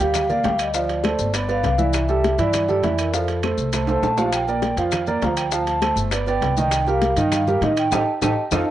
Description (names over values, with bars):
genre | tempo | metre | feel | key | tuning
Afro-Cuban jazz | 201 BPM | 4/4 | straight | G minor | A4 = 440 Hz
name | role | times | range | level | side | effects
vibraphone with medium mallets | melody | 0.0-8.6 s | A4 to Bb5 | -24 LUFS | equal | cassette tape
warm grand piano | accompaniment | 0.0-8.6 s | Eb3 to G5 | -22 LUFS | right 4 dB | cassette tape
upright bass | bass | 0.0-8.6 s | G1 to A2 | -25 LUFS | left 2 dB | none
bongos | percussion | 0.0-8.6 s | none | -30 LUFS | left 8 dB | none
congas | percussion | 0.0-8.6 s | none | -30 LUFS | left 2 dB | none
maracas | percussion | 0.0-8.6 s | none | -32 LUFS | left 10 dB | none
timbales | percussion | 0.1-8.6 s | none | -30 LUFS | right 6 dB | none
claves | percussion | 0.2-8.6 s | none | -36 LUFS | right 6 dB | none
room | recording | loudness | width
moderate spring reverb, RT60 1.5 s | home recording on cassette, nothing above 11.0 kHz | -18 LUFS | side -12 dB against mid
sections
0.0-8.7 A section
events
drum fill 3.9-4.3, 8.2-8.7; band accent 7.9-8.7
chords
0.0 Gm7; 0.7 Dm7; 1.3 G6; 1.9 C69; 3.1 F; 4.3 Bb6; 5.5 Dm7; 6.1 G; 6.7 Cm7; 7.9 Gsus2/A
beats
0.15 0.45 | 0.74 1.04 1.34 1.64 | 1.94 2.24 2.54 2.83 | 3.13 3.43 3.73 4.03 | 4.33 4.63 4.93 5.22 | 5.52 5.82 6.12 6.42 | 6.72 7.02 7.32 7.62 | 7.92 8.22 8.52